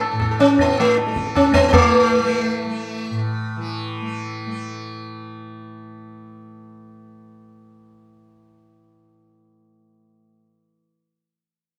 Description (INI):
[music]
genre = indian classical, Hindustani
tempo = 159 BPM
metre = 4/4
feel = straight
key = unclear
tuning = A4 = 440 Hz
[part]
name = sitar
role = melody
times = 0.0-3.2 s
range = A3 to A4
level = -18 LUFS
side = equal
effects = none
[part]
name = tanpura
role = drone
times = 0.0-10.7 s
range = A2 to A3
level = -31 LUFS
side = equal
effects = none
[part]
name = tabla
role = percussion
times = 0.0-1.9 s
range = none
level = -25 LUFS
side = equal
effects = none
[sound]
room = moderate studio reverb, RT60 0.8 s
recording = band playing live in one room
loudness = -19 LUFS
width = mono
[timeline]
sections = 0.0-1.7 A section; 1.7-4.7 B section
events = speeding up 0.0-4.7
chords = none